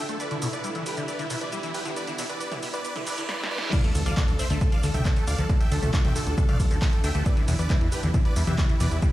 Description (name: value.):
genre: uplifting trance.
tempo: 136 BPM.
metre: 4/4.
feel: straight.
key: D dorian.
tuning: A4 = 438 Hz.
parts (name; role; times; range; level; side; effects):
supersaw chords; melody; 0.0-9.1 s; E4 to G5; -32 LUFS; equal; sidechain pumping, dub echo.
shimmering ambient pad; sustained chords; 0.0-9.1 s; D3 to A4; -37 LUFS; right 1 dB; chorus, built-in reverb, sidechain pumping.
liquid acid bass; arpeggios; 0.0-9.1 s; B2 to D4; -34 LUFS; left 2 dB; phaser, wide subtle chorus, sidechain pumping, digital delay.
plucky analog bass; bass; 0.0-9.0 s; D2 to E2; -27 LUFS; equal; sidechain pumping, high-pass filter.
riser, reverse cymbal and impact; sound effects; 0.1-5.5 s; none; -35 LUFS; right 1 dB; none.
punchy analog drum machine; drums; 0.1-9.1 s; crash cymbal, handclaps, hi-hat, shaker, snare drum, toms; -33 LUFS; equal; none.
electronic kick drum; drums; 3.7-9.1 s; none; -22 LUFS; equal; none.
room: little or no reverb.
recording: played on a big sound system in a bare room, large studio reverb, high-pass filter.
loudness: -22 LUFS.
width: side -15 dB against mid.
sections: 0.0-3.7 A section; 3.7-9.1 B section.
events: build-up 0.0-3.7; filter sweep on acid bass 0.0-3.7; riser 0.1-3.3; reverse cymbal 2.8-3.7; drum fill 3.3-3.7; drop 3.7-9.1; impact 3.7-5.5.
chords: 0.2 Em7; 3.7 Dm; 7.3 Em7.